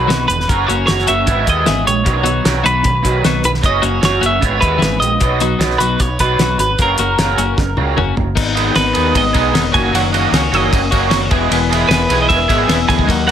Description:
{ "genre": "indie rock", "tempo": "152 BPM", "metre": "4/4", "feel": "straight", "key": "B major", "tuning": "A4 = 442 Hz", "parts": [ { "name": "twelve-string electric guitar", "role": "melody", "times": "0.0-13.3 s", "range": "A#4 to G#5", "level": "-17 LUFS", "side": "right 1 dB", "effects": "spring reverb, plate reverb, tape echo" }, { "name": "raw garage guitar", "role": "riff", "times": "0.0-13.3 s", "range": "F#2 to G#4", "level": "-19 LUFS", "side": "right 7 dB", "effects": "overdrive, analog chorus, tape echo" }, { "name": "overdriven picked electric bass", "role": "bass", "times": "0.0-13.3 s", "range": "E1 to D#2", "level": "-20 LUFS", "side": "equal", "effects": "none" }, { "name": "twelve-string electric guitar", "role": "riff", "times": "0.1-13.3 s", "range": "D#3 to G#4", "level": "-19 LUFS", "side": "left 10 dB", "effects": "none" }, { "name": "cloth-damped thuddy drum kit", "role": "drums", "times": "0.1-13.3 s", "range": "crash cymbal, hi-hat, kick drum, ride cymbal, snare drum, toms", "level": "-18 LUFS", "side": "equal", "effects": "none" } ], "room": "light reverb", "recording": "none", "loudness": "-12 LUFS", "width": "side -9 dB against mid", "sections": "0.0-8.4 A section; 8.4-13.3 B section", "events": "drum fill 7.6-8.4", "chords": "0.5 F#; 1.3 E/G#; 2.1 B; 3.6 F#; 4.4 E/G#; 5.2 B; 6.8 F#; 8.4 G#m; 9.7 F#6; 11.3 E", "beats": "0.09 | 0.48 0.88 1.27 1.67 | 2.06 2.45 2.85 3.24 | 3.63 4.03 4.42 4.82 | 5.21 5.60 6.00 6.39 | 6.79 7.18 7.58 7.97 | 8.36 8.76 9.15 9.54 | 9.94 10.33 10.72 11.12 | 11.51 11.90 12.30 12.69 | 13.08" }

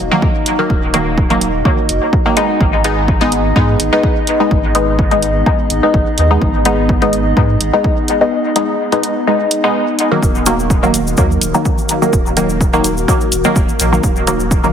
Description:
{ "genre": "dub techno", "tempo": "126 BPM", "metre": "4/4", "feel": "swing 54% on 16ths", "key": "Eb minor", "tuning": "A4 = 439 Hz", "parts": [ { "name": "warbly tape-like pad", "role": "sustained chords", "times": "0.0-14.7 s", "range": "Eb3 to Eb5", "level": "-20 LUFS", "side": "left 1 dB", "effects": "chorus, built-in reverb, sidechain pumping" }, { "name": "filtered dub chord stab", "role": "stabs", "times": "0.0-14.7 s", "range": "Eb3 to Eb4", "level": "-15 LUFS", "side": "equal", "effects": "chorus, phaser, sidechain pumping, dub echo" }, { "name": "warm sub bass", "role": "bass", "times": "0.0-14.7 s", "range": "Eb1 to Ab2", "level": "-18 LUFS", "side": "equal", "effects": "sidechain pumping" }, { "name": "electronic kick drum", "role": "drums", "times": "0.2-14.6 s", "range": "none", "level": "-15 LUFS", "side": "equal", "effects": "none" }, { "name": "electronic hi-hat", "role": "drums", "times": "0.5-14.4 s", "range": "none", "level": "-18 LUFS", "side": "right 3 dB", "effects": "none" }, { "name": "cabasa", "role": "percussion", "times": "10.2-14.7 s", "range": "none", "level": "-23 LUFS", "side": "left 3 dB", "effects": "none" } ], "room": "moderate digital room reverb, RT60 1.4 s, digital ambience", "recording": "heavily compressed radio sound", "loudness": "-11 LUFS", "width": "side -8 dB against mid", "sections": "0.0-10.2 A section; 10.2-14.7 A section", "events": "none", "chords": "0.0 Ebm; 2.6 Abm; 10.2 Ebm", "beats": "0.23 | 0.70 1.18 1.65 2.13 | 2.61 3.08 3.56 4.04 | 4.51 4.99 5.46 5.94 | 6.42 6.89 7.37 7.84 | 8.32 8.80 9.27 9.75 | 10.23 10.70 11.18 11.65 | 12.13 12.61 13.08 13.56 | 14.04 14.51" }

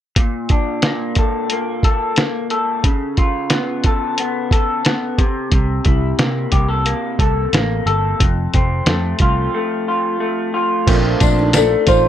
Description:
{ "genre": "indie pop, bedroom pop", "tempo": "90 BPM", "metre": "4/4", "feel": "straight", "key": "Bb major", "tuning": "A4 = 442 Hz", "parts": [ { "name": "electric guitar through a small old amp", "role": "accompaniment", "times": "0.2-12.1 s", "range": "F2 to A4", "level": "-19 LUFS", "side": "left 2 dB", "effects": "analog chorus, warbly pitch drift, plate reverb" }, { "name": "lo-fi sampler-style drum kit", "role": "drums", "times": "0.2-12.0 s", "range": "crash cymbal, hi-hat, kick drum, snare drum", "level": "-16 LUFS", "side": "equal", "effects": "none" }, { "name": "vintage muted picked electric bass", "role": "bass", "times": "5.5-12.1 s", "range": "F1 to C3", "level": "-19 LUFS", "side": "right 1 dB", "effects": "none" }, { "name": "kalimba", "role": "second line", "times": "10.9-12.0 s", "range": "D4 to D5", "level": "-22 LUFS", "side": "right 7 dB", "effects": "lush chorus, plate reverb" }, { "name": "warm analog keys", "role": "accompaniment", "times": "10.9-12.1 s", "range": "A3 to F4", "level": "-22 LUFS", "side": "right 5 dB", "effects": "chorus, cassette tape, plate reverb" }, { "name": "tambourine", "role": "percussion", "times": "10.9-12.0 s", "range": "none", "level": "-29 LUFS", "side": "left 16 dB", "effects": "none" }, { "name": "hollow clarinet-like synth lead", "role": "melody", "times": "11.6-12.1 s", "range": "A4 to C5", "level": "-14 LUFS", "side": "left 2 dB", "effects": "phaser, wide subtle chorus, plate reverb" } ], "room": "light reverb", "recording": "none", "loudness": "-15 LUFS", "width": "side -11 dB against mid", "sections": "0.2-10.9 A section; 10.9-12.1 B section", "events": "break 9.5-10.9", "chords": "0.2 Bbmaj7; 2.8 Dbaug7; 5.2 C6; 8.2 F; 10.9 Bbmaj7", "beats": "| 0.17 0.83 1.50 2.17 | 2.84 3.51 4.18 4.85 | 5.52 6.19 6.86 7.53 | 8.20 8.87 9.53 10.20 | 10.87 11.54" }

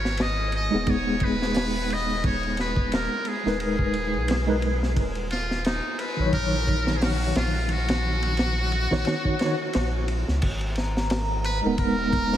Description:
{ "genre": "trip hop", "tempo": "88 BPM", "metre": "4/4", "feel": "swing 56% on 16ths", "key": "G# minor", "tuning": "A4 = 440 Hz", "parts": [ { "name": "trumpet with metal mute", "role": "melody", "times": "0.0-12.4 s", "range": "D#4 to D#5", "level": "-29 LUFS", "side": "equal", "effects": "vintage 12-bit sampler grit, tape echo" }, { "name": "soft dub sub bass", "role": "bass", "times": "0.0-12.4 s", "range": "D#1 to C#2", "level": "-28 LUFS", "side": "equal", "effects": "none" }, { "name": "crunchy breakbeat drum kit", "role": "drums", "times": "0.1-12.4 s", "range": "crash cymbal, hi-hat, kick drum, ride cymbal, snare drum", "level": "-28 LUFS", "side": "equal", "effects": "none" }, { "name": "tine electric piano", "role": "accompaniment", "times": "0.7-12.4 s", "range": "D#3 to C#5", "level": "-27 LUFS", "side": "equal", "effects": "overdrive, fast stereo tremolo, vintage 12-bit sampler grit, tape echo" }, { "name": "dark analog pad", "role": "sustained chords", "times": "10.7-12.4 s", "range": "A#5", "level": "-31 LUFS", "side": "right 3 dB", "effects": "chorus, phaser" } ], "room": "moderate huge ambient reverb, RT60 3.7 s", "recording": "dreamy mix soaked in reverb, vinyl crackle", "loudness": "-22 LUFS", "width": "side -11 dB against mid", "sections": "0.0-10.4 A section; 10.4-12.4 B section", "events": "none", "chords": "0.0 G#madd9; 5.0 D#m7; 10.4 G#madd9", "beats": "0.19 0.88 1.56 | 2.24 2.92 3.60 4.28 | 4.97 5.65 6.33 7.01 | 7.69 8.38 9.06 9.74 | 10.42 11.10 11.78" }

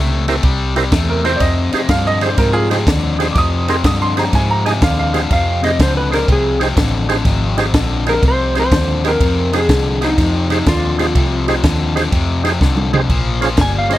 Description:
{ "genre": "electric blues shuffle", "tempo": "123 BPM", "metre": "4/4", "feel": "swing 67% on 8ths", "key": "F minor", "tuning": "A4 = 440 Hz", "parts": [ { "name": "bright upright piano", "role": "second line", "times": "0.0-5.3 s", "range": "F4 to Eb6", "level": "-19 LUFS", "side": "right 2 dB", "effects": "none" }, { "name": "cranked stack guitar", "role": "riff", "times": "0.0-14.0 s", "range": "F2 to A3", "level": "-20 LUFS", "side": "left 5 dB", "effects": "overdrive" }, { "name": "vintage muted fingered electric bass", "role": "bass", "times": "0.0-14.0 s", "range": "G1 to Ab2", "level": "-18 LUFS", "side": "equal", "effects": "none" }, { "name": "percussive tonewheel organ", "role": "accompaniment", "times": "0.3-14.0 s", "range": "Db4 to Eb5", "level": "-19 LUFS", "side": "right 4 dB", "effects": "slow rotary speaker, overdrive, chorus vibrato" }, { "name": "compact cocktail drum kit", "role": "drums", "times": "0.3-14.0 s", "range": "kick drum, ride cymbal, snare drum, toms", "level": "-18 LUFS", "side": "equal", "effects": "none" }, { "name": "clean lap steel guitar", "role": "melody", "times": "5.3-14.0 s", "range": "Eb4 to Ab5", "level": "-19 LUFS", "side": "equal", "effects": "none" } ], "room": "little or no reverb", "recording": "none", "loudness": "-13 LUFS", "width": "side -14 dB against mid", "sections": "0.0-5.3 A section; 5.3-14.0 A section", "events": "upright piano solo 0.0-5.3; electric slide guitar solo 5.3-14.0; drum fill 12.6-13.1", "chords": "0.0 C7; 1.4 Fm7; 13.1 Bbm7", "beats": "0.43 0.92 | 1.41 1.90 2.38 2.87 | 3.36 3.84 4.33 4.82 | 5.30 5.79 6.28 6.77 | 7.25 7.74 8.23 8.72 | 9.20 9.69 10.18 10.66 | 11.15 11.63 12.12 12.61 | 13.09 13.58" }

